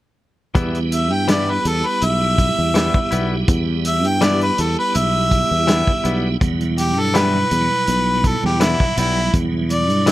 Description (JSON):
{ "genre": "straight-eighth soul blues", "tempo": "82 BPM", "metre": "4/4", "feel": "swing 53% on 16ths", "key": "E minor", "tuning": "A4 = 440 Hz", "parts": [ { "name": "tonewheel organ", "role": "accompaniment", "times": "0.5-10.1 s", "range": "B2 to G4", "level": "-24 LUFS", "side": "right 6 dB", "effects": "slow rotary speaker, chorus vibrato" }, { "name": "direct-recorded clean electric guitar", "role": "stabs", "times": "0.5-10.1 s", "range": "E3 to E4", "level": "-25 LUFS", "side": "left 4 dB", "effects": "none" }, { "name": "fretless electric bass", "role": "bass", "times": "0.6-10.1 s", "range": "B1 to G2", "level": "-20 LUFS", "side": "equal", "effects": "none" }, { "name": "warm soul drum kit", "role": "drums", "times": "0.6-10.1 s", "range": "hi-hat, kick drum, snare drum", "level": "-20 LUFS", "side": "equal", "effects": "none" }, { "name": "bright harmonica", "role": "melody", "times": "0.9-10.1 s", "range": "E4 to G5", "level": "-19 LUFS", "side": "equal", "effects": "overdrive" } ], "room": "little or no reverb", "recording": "none", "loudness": "-15 LUFS", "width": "side -15 dB against mid", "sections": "0.6-10.1 A section", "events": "none", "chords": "0.6 Em", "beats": "| 0.55 1.28 2.02 2.75 | 3.48 4.21 4.95 5.68 | 6.41 7.14 7.87 8.61 | 9.34 10.07" }